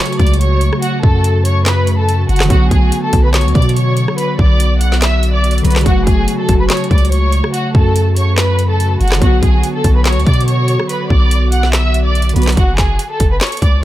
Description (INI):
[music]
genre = hip hop, trap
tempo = 143 BPM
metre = 4/4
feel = half-time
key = F# minor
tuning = A4 = 439 Hz
[part]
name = warm studio violin section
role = melody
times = 0.0-13.8 s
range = F#4 to F#6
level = -19 LUFS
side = equal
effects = low-pass filter, dub echo
[part]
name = warbly lo-fi synth keys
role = accompaniment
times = 0.0-12.6 s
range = C#3 to F#4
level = -20 LUFS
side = equal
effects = chorus, phaser, low-pass filter, dub echo
[part]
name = warbly tape-like pad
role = sustained chords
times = 0.0-12.5 s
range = C#3 to F#4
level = -24 LUFS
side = equal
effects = chorus, built-in reverb
[part]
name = trap drum kit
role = drums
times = 0.1-13.7 s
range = handclaps, hi-hat, kick drum, rim click, snare drum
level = -15 LUFS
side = equal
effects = none
[part]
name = long sustained 808-style bass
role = bass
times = 0.2-13.8 s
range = F#1 to B2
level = -13 LUFS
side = equal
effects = none
[sound]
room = digital ambience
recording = echo-heavy mix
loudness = -10 LUFS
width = side -14 dB against mid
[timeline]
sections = 0.0-12.6 A section; 12.6-13.8 B section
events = none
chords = 0.0 F#m; 2.5 Bm; 5.9 F#m; 9.2 Bm; 12.6 F#m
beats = 0.40 | 0.82 1.24 1.66 2.08 | 2.50 2.92 3.34 3.76 | 4.18 4.60 5.02 5.44 | 5.86 6.28 6.70 7.12 | 7.54 7.96 8.38 8.80 | 9.21 9.63 10.05 10.47 | 10.89 11.31 11.73 12.15 | 12.57 12.99 13.41